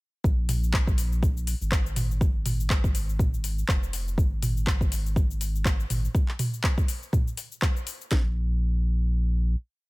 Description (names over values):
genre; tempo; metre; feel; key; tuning
afro house; 122 BPM; 4/4; swing 56% on 16ths; unclear; A4 = 440 Hz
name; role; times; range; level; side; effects
warm sub bass; bass; 0.2-9.5 s; F1 to Bb1; -26 LUFS; equal; sidechain pumping
afro-pop drum kit; drums; 0.2-8.2 s; kick drum, snare drum; -24 LUFS; equal; small room ambience
afro-pop drum kit; drums; 0.2-8.1 s; handclaps, hi-hat, rim click, shaker, toms; -30 LUFS; equal; small room ambience
room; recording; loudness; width
little or no reverb; none; -23 LUFS; side -23 dB against mid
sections
0.2-8.1 drop; 8.1-9.9 final note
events
drop 0.2-8.1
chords
none